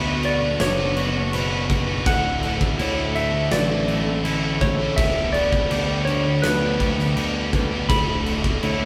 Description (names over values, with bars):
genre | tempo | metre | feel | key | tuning
post-rock | 82 BPM | 4/4 | straight | D major | A4 = 437 Hz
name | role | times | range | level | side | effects
clean lap steel guitar | melody | 0.0-8.9 s | B4 to B5 | -28 LUFS | equal | none
dark chamber string section | sustained chords | 0.0-8.9 s | D4 to C#6 | -38 LUFS | equal | none
felt-muted upright piano | arpeggios | 0.0-8.9 s | D4 to C#6 | -37 LUFS | equal | none
twangy electric guitar | arpeggios | 0.0-8.9 s | D2 to B4 | -36 LUFS | equal | none
distorted electric guitar | riff | 0.0-8.9 s | D2 to B4 | -31 LUFS | equal | overdrive
thick fuzz guitar | riff | 0.0-8.9 s | D2 to B4 | -30 LUFS | equal | distortion
fuzz picked electric bass | bass | 0.0-8.9 s | D1 to D2 | -28 LUFS | equal | overdrive
huge arena drum kit | drums | 0.2-8.8 s | crash cymbal, kick drum, snare drum | -27 LUFS | equal | none
room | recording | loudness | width
moderate stone room reverb, RT60 1.3 s | band playing live in one room | -21 LUFS | mono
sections
0.0-8.9 A section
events
none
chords
0.0 Bmadd9; 2.1 Dsus2; 5.0 Gadd9/D; 7.9 Dsus2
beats
0.60 1.33 | 2.06 2.79 3.52 4.25 | 4.98 5.71 6.44 7.17 | 7.89 8.62